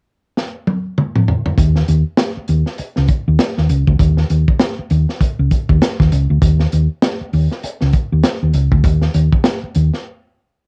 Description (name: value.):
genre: funk.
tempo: 99 BPM.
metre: 4/4.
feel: swing 60% on 16ths.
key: unclear.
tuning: A4 = 439 Hz.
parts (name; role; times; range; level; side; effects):
crunchy breakbeat drum kit; drums; 0.4-10.0 s; hi-hat, kick drum, snare drum, toms; -18 LUFS; equal; cassette tape.
hollow-body short-scale fingered electric bass; bass; 1.6-9.9 s; Db2 to Eb2; -16 LUFS; equal; none.
room: light reverb.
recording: home recording on cassette.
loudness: -16 LUFS.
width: mono.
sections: 0.0-1.6 A section; 1.6-10.7 B section.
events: drum fill 0.4-1.6; break 10.1-10.7.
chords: none.